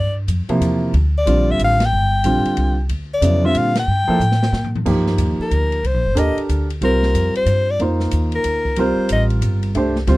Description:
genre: modal jazz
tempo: 184 BPM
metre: 3/4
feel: swing 64% on 8ths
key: G dorian, C dorian from 4.9 s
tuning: A4 = 439 Hz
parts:
  - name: breathy soprano saxophone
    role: melody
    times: 0.0-9.2 s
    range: Bb4 to G5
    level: -19 LUFS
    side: left 2 dB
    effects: none
  - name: upright bass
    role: bass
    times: 0.0-10.2 s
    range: G1 to Bb2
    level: -18 LUFS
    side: equal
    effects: none
  - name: open jazz drum kit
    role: drums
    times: 0.3-10.2 s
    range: crash cymbal, hi-hat, kick drum, ride cymbal, snare drum, toms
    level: -30 LUFS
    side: equal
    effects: none
  - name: warm baby grand piano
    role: accompaniment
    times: 0.5-10.2 s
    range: C3 to C5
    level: -20 LUFS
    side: right 2 dB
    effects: none
room: little or no reverb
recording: dry, close 1970s-style studio recording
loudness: -15 LUFS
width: side -19 dB against mid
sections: 0.0-4.9 A section; 4.9-10.2 B section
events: band accent 1.8, 3.7; drum fill 4.2-4.9; soprano saxophone solo 4.9-10.2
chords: 0.0 Gm9; 4.9 Cm11 (rootless); 6.8 Dm7/C; 8.8 C9sus4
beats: 0.28 0.61 | 0.94 1.26 1.59 | 1.92 2.24 2.57 | 2.90 3.22 3.55 | 3.88 4.20 4.53 | 4.86 5.18 5.51 | 5.83 6.16 6.49 | 6.81 7.14 7.47 | 7.79 8.12 8.45 | 8.77 9.10 9.43 | 9.75 10.08

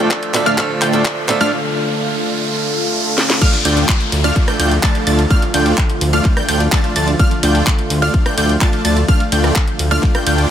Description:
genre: EDM, festival progressive house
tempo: 127 BPM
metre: 4/4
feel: straight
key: D minor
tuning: A4 = 440 Hz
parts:
  - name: picked swing-style acoustic guitar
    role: accompaniment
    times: 0.0-1.5 s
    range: F3 to A4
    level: -22 LUFS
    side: right 3 dB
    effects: sidechain pumping, tape echo
  - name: lush unison pad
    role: sustained chords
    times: 0.0-10.5 s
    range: D3 to A4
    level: -22 LUFS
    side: equal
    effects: chorus, sidechain pumping
  - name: wide unison pluck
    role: arpeggios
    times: 0.0-10.5 s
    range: F6 to A6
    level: -23 LUFS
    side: right 1 dB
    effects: sidechain pumping, tape echo
  - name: dense compressed supersaw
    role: riff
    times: 0.0-10.5 s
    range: A3 to A5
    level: -20 LUFS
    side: equal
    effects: sidechain pumping, low-pass filter, tape echo
  - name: fat analog bass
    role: bass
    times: 0.0-10.5 s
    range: D2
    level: -17 LUFS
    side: equal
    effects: sidechain pumping, high-pass filter
  - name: riser and downlifter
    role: sound effects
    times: 0.2-7.2 s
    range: none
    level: -24 LUFS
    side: right 1 dB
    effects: none
  - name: electronic kick drum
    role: drums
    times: 0.1-10.1 s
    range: none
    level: -15 LUFS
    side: equal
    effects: high-pass filter on kick, high-pass filter on room
  - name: house drum kit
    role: drums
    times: 0.1-10.5 s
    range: crash cymbal, handclaps, hi-hat, ride cymbal, rim click, snare drum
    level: -21 LUFS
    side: equal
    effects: none
room: light reverb, digital ambience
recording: none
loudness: -13 LUFS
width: side -10 dB against mid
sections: 0.0-3.4 A section; 3.4-10.5 B section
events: build-up 0.0-3.4; drum fill 0.0-1.5, 3.2; filter sweep on analog synth pad 0.0-3.4; riser 0.2-3.4; break 1.5-3.4; drop 3.4-10.5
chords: 0.0 Dm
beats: 0.11 0.58 1.05 | 1.53 2.00 2.47 2.94 | 3.42 3.89 4.36 4.83 | 5.30 5.78 6.25 6.72 | 7.20 7.67 8.14 8.61 | 9.09 9.56 10.03 10.50

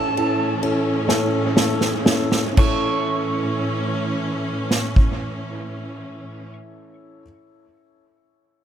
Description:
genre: six-eight pop ballad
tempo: 38-47 BPM (dotted quarters)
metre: 6/8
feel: straight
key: A major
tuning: A4 = 440 Hz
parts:
  - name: lead guitar through a small cranked amp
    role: melody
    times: 0.0-6.5 s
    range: A5 to C#6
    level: -28 LUFS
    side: right 4 dB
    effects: overdrive, dub echo
  - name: dark baby grand piano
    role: accompaniment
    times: 0.0-7.2 s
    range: C#4 to A4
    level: -26 LUFS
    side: left 4 dB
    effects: dub echo
  - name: clear studio string section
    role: sustained chords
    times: 0.0-6.5 s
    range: A2 to C#4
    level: -26 LUFS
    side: right 1 dB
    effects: none
  - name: fingerpicked plugged-in steel-string acoustic guitar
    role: arpeggios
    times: 0.0-7.3 s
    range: C#4 to A4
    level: -29 LUFS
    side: right 7 dB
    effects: dub echo
  - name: unplugged drum kit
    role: drums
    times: 0.2-5.2 s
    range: crash cymbal, kick drum, ride cymbal, snare drum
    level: -20 LUFS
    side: right 1 dB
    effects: dub echo
room: little or no reverb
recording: echo-heavy mix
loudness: -18 LUFS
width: side -10 dB against mid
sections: 0.0-2.6 A section; 2.6-5.8 B section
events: slowing down 0.0-2.6; drum fill 1.1-2.6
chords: 0.0 A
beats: 1.09 | 2.58 4.17

